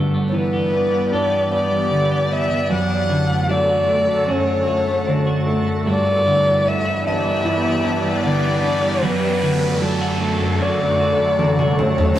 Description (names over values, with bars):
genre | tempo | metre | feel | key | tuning
pop ballad | 76 BPM | 4/4 | straight | D major | A4 = 435 Hz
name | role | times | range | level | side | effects
warm concert grand piano | accompaniment | 0.0-12.2 s | F#2 to E4 | -22 LUFS | right 1 dB | none
shimmering ambient pad | sustained chords | 0.0-12.1 s | F#2 to D5 | -23 LUFS | equal | chorus, built-in reverb
twelve-string electric guitar | arpeggios | 0.0-12.2 s | F#2 to G4 | -24 LUFS | right 1 dB | none
dark violin | melody | 0.3-12.2 s | A4 to F#5 | -20 LUFS | left 1 dB | none
noise sweep | sound effects | 6.9-12.2 s | none | -29 LUFS | equal | none
toms | drums | 11.4-12.2 s | none | -20 LUFS | equal | none
room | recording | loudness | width
moderate stone room reverb, RT60 1.1 s | rough rehearsal-room recording, tube saturation | -16 LUFS | side -12 dB against mid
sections
0.0-12.2 A section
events
noise sweep 6.9-12.2; drum fill 11.4-12.2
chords
0.0 G6; 2.7 Dmaj7/F#; 5.9 G6; 9.0 D/F#